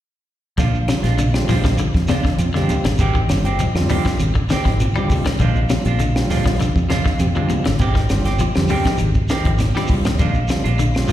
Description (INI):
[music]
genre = afrobeat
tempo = 100 BPM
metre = 4/4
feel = straight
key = Bb mixolydian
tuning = A4 = 440 Hz
[part]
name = clean electric guitar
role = arpeggios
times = 0.6-11.1 s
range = C3 to G3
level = -25 LUFS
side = left 5 dB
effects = harmonic tremolo, tape echo, slapback echo
[part]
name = semi-hollow electric guitar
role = stabs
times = 0.6-11.1 s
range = Eb3 to G4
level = -25 LUFS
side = right 4 dB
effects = tape echo, slapback echo
[part]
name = fingered electric bass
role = bass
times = 0.6-11.1 s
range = G1 to F2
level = -19 LUFS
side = equal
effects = none
[part]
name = tight funk drum kit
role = drums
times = 0.6-11.1 s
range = hi-hat, kick drum, snare drum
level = -22 LUFS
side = equal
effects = none
[part]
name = shekere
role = percussion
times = 0.6-11.1 s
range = none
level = -29 LUFS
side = right 2 dB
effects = slapback echo
[part]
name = overdriven combo organ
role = accompaniment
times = 0.9-11.1 s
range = D3 to G4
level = -24 LUFS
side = right 1 dB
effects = slapback echo
[part]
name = claves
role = percussion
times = 0.9-11.1 s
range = none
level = -38 LUFS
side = left 1 dB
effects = none
[part]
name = congas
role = percussion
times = 1.2-11.1 s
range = none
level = -25 LUFS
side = equal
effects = slapback echo
[sound]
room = little or no reverb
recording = live gig heard through the venue's PA, recital hall reverb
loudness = -16 LUFS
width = side -12 dB against mid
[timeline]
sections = 0.6-11.1 A section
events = drum fill 9.6-10.2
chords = 0.6 Bb7; 3.0 Abmaj7; 5.4 Bb7; 7.8 Abmaj7; 10.2 Bb7